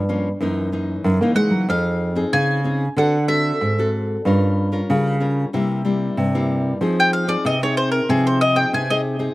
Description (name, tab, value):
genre	samba and choro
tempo	94 BPM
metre	4/4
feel	straight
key	F minor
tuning	A4 = 444 Hz
part	nylon-string guitar	accompaniment	0.0-9.3 s	Gb2 to Bb4	-24 LUFS	left 2 dB	slapback echo
part	nylon-string guitar	bass	0.0-9.3 s	F2 to Bb3	-20 LUFS	right 1 dB	none
part	bowl-back mandolin	melody	1.4-9.0 s	Ab4 to Ab5	-20 LUFS	equal	slapback echo
room	little or no reverb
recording	recorded outdoors, with no room sound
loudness	-17 LUFS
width	side -18 dB against mid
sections	0.0-9.3 A section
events	mandolin solo 0.0-9.3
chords	0.4 Gb13; 1.7 Fm7; 3.0 D7; 4.3 Gm7b5; 5.5 C7; 6.8 Fm7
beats	0.41 1.05 | 1.69 2.33 2.98 3.62 | 4.26 4.90 5.54 6.18 | 6.82 7.46 8.10 8.74